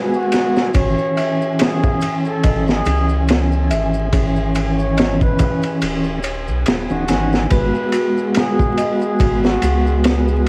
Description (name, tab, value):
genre	trip hop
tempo	71 BPM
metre	4/4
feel	swing 56% on 16ths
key	unclear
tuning	A4 = 437 Hz
part	mellow tonewheel organ	accompaniment	0.0-10.5 s	E3 to F#4	-23 LUFS	equal	slow rotary speaker, tremolo
part	string machine, cellos	sustained chords	0.0-10.5 s	G#4 to G#5	-33 LUFS	equal	ensemble chorus
part	music box	arpeggios	0.0-10.4 s	F#4 to G#5	-29 LUFS	equal	vintage 12-bit sampler grit, tape echo
part	maracas	percussion	0.1-10.4 s	none	-44 LUFS	equal	none
part	trumpet with bucket mute	melody	0.2-10.0 s	F#4 to C#5	-27 LUFS	equal	cassette tape, tape echo
part	crunchy breakbeat drum kit	drums	0.3-10.3 s	kick drum, ride cymbal, snare drum	-22 LUFS	equal	none
part	round analog bass	bass	0.8-10.5 s	D#1 to C#2	-22 LUFS	equal	none
room	light reverb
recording	home recording on cassette, vinyl crackle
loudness	-17 LUFS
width	mono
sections	0.0-10.5 A section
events	none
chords	0.0 G#m7; 0.7 C#madd9/G#; 7.5 G#m7